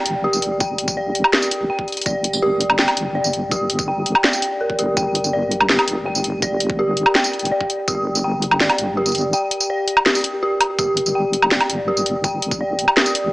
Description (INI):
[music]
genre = half-time drum and bass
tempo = 165 BPM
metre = 4/4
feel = half-time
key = unclear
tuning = A4 = 440 Hz
[part]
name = dark detuned synth bell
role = arpeggios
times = 0.0-13.3 s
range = G4 to G5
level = -20 LUFS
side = equal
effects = chorus, phaser, tape echo
[part]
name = deep soft wobble bass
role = bass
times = 0.1-13.3 s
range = G1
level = -25 LUFS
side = equal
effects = chorus
[part]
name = drum and bass drum kit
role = drums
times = 0.1-13.2 s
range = hi-hat, snare drum, tambourine, woodblock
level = -18 LUFS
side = equal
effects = none
[part]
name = electronic kick drum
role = drums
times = 0.6-8.0, 10.8-12.6 s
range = none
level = -25 LUFS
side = equal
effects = none
[sound]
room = moderate lush hall reverb, RT60 2.0 s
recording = small speaker sound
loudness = -16 LUFS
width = side -19 dB against mid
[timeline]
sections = 0.0-13.3 A section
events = none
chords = 0.0 G5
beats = 0.24 | 0.60 0.97 1.33 1.70 | 2.06 2.42 2.79 3.15 | 3.51 3.88 4.24 4.61 | 4.97 5.33 5.70 6.06 | 6.42 6.79 7.15 7.51 | 7.88 8.24 8.61 8.97 | 9.33 9.70 10.06 10.42 | 10.79 11.15 11.51 11.88 | 12.24 12.61 12.97